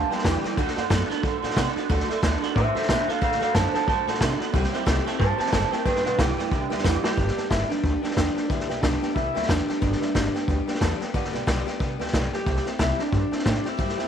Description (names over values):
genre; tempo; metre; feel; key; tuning
rockabilly; 182 BPM; 4/4; swing 59% on 8ths; G major; A4 = 440 Hz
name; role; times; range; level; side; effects
electric guitar through a small old amp; melody; 0.0-14.1 s; D4 to A5; -27 LUFS; right 1 dB; tape echo
dark upright piano; accompaniment; 0.0-14.1 s; A4 to A5; -34 LUFS; right 12 dB; none
picked steel-string acoustic guitar; accompaniment; 0.0-14.1 s; G2 to A4; -32 LUFS; left 11 dB; none
electric guitar through a small old amp; riff; 0.0-7.2 s; G2 to B3; -29 LUFS; right 15 dB; ensemble chorus
upright bass; bass; 0.0-14.1 s; F#1 to C3; -27 LUFS; equal; none
vintage drum kit; drums; 0.1-14.0 s; hi-hat, kick drum, snare drum; -26 LUFS; equal; none
room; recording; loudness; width
light reverb; 1960s-style stereo with parts hard left and right; -22 LUFS; side -8 dB against mid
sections
0.0-7.2 A section; 7.2-14.1 B section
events
clean electric guitar solo 0.0-7.2; drum fill 6.8-7.2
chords
0.0 G; 0.6 D; 4.5 C; 5.9 G; 12.5 C